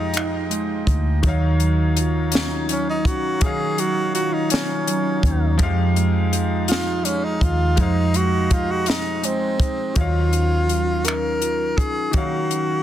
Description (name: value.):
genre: slow six-eight R&B.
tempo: 55 BPM (dotted quarters).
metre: 6/8.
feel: straight.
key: Eb dorian.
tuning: A4 = 445 Hz.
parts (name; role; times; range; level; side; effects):
breathy tenor saxophone; melody; 0.0-12.8 s; C4 to Bb4; -24 LUFS; equal; none.
mellow electric guitar; second line; 0.0-12.8 s; Eb3 to G4; -26 LUFS; right 5 dB; warbly pitch drift.
bright baby grand piano; accompaniment; 0.0-12.8 s; Eb3 to F5; -28 LUFS; left 5 dB; none.
hand-pumped harmonium; sustained chords; 0.0-9.9 s; Gb3 to G5; -32 LUFS; right 1 dB; none.
vintage muted fingered electric bass; bass; 0.0-12.8 s; Db2 to F2; -22 LUFS; equal; none.
compact cocktail drum kit; drums; 0.1-12.7 s; finger snaps, hi-hat, kick drum, snare drum; -22 LUFS; equal; none.
room: light reverb.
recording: dense, heavily limited modern master.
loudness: -18 LUFS.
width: side -11 dB against mid.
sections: 0.0-10.0 A section; 10.0-12.8 B section.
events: tenor saxophone solo 0.0-10.0.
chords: 0.0 Fm9; 1.2 Ebm9; 5.6 Fm9; 10.0 Ebm9.